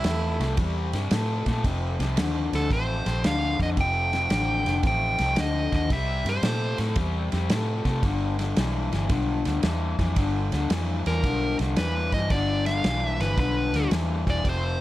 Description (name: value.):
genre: electric blues shuffle.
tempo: 113 BPM.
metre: 4/4.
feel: swing 67% on 8ths.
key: unclear.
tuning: A4 = 440 Hz.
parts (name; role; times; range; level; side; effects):
warm harmonica; second line; 0.0-0.6 s; E4; -33 LUFS; right 4 dB; overdrive.
raw garage guitar; riff; 0.0-14.8 s; F2 to A3; -28 LUFS; left 4 dB; overdrive.
vintage muted fingered electric bass; bass; 0.0-14.8 s; E1 to C3; -27 LUFS; right 1 dB; none.
warm soul drum kit; drums; 0.0-14.6 s; kick drum, ride cymbal, snare drum; -29 LUFS; equal; none.
dark smooth lead guitar; melody; 2.6-6.8, 11.1-14.8 s; A4 to G5; -28 LUFS; right 1 dB; overdrive.
room: little or no reverb.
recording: none.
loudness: -22 LUFS.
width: side -15 dB against mid.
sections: 0.0-14.8 A section.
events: none.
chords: 0.0 C; 1.6 Fadd9; 5.9 C7; 8.0 G.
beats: 0.05 0.58 1.12 | 1.65 2.18 2.71 3.25 | 3.78 4.31 4.84 5.37 | 5.91 6.44 6.97 7.50 | 8.04 8.57 9.10 9.64 | 10.17 10.71 11.24 11.78 | 12.31 12.85 13.38 13.92 | 14.45.